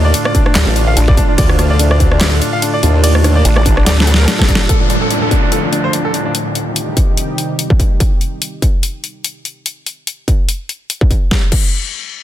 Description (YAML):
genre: heavy wobble dubstep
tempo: 145 BPM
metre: 4/4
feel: swing 55% on 16ths, half-time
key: D phrygian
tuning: A4 = 440 Hz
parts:
  - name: bright baby grand piano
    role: melody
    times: 0.0-6.3 s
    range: D4 to F5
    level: -19 LUFS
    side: equal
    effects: ping-pong delay
  - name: lush unison pad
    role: sustained chords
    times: 0.0-8.0 s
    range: A2 to G4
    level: -20 LUFS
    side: equal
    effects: chorus, sidechain pumping
  - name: formant-sweep wobble bass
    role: bass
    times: 0.0-3.4 s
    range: A1 to Eb2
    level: -12 LUFS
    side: equal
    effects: chorus, overdrive
  - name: dubstep drum kit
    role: drums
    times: 0.1-11.7 s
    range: crash cymbal, handclaps, hi-hat, ride cymbal, rim click, snare drum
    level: -17 LUFS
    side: left 1 dB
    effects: overdrive
  - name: electronic kick drum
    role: drums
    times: 0.3-11.7 s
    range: none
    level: -13 LUFS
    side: equal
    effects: distortion
  - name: vowel-sweep wobble bass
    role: bass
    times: 0.6-4.3 s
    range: A1 to D2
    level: -12 LUFS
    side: equal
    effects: chorus, overdrive
  - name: downlifter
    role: sound effects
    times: 4.7-8.0 s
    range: none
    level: -20 LUFS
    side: equal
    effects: none
room: digital ambience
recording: dense, heavily limited modern master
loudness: -11 LUFS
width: side -12 dB against mid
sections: 0.0-4.7 A section; 4.7-11.3 B section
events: drop 0.0-4.7; drum fill 3.9-4.7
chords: 0.0 D5; 4.7 Dm; 6.3 Cm; 8.0 N.C.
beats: 0.14 0.55 0.97 | 1.38 1.79 2.21 2.62 | 3.04 3.45 3.86 4.28 | 4.69 5.11 5.52 5.93 | 6.35 6.76 7.17 7.59 | 8.00 8.42 8.83 9.24 | 9.66 10.07 10.48 10.90 | 11.31